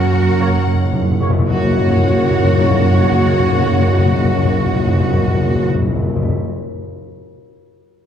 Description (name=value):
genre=cinematic, heroic adventure film score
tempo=70 BPM (dotted quarters)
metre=6/8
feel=straight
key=F# major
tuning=A4 = 440 Hz
part: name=warm symphonic violin section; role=melody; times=0.0-5.7 s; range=F#5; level=-30 LUFS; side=left 5 dB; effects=none
part: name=bright silver concert flute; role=second line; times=0.0-5.7 s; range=F#5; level=-33 LUFS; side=left 5 dB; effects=none
part: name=warm clarinet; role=second line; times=0.0-5.7 s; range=none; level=barely audible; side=none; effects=none
part: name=warm oboe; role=second line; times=0.0-1.0 s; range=A#4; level=-32 LUFS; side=equal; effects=none
part: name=warm symphonic violin section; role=second line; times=0.0-5.7 s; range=C#5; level=-30 LUFS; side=left 2 dB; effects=none
part: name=dark symphonic viola section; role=accompaniment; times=0.0-5.7 s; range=A#3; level=-25 LUFS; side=right 2 dB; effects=none
part: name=warm French horn section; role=sustained chords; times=0.0-5.7 s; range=F#4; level=-27 LUFS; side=left 7 dB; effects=none
part: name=rich studio double bass section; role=bass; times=0.0-5.7 s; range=F#2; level=-20 LUFS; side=right 4 dB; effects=none
part: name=rich symphonic cello section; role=bass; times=0.0-5.7 s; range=F#4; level=-22 LUFS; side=right 1 dB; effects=none
part: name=timpani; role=percussion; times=0.0-6.4 s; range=F#2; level=-16 LUFS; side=left 2 dB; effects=none
part: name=warm trombone section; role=sustained chords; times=0.4-5.7 s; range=C#3 to A#3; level=-27 LUFS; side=right 2 dB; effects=none
part: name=dark trumpet section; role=stabs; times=0.4-5.7 s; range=C#5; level=-25 LUFS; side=right 3 dB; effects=none
room=wet scoring stage reverb, RT60 1.8 s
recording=dark, warm production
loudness=-13 LUFS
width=side -8 dB against mid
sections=0.0-1.5 A section; 1.5-4.9 B section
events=timpani fill 0.0-1.5; slowing down 0.0-1.5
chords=0.0 F#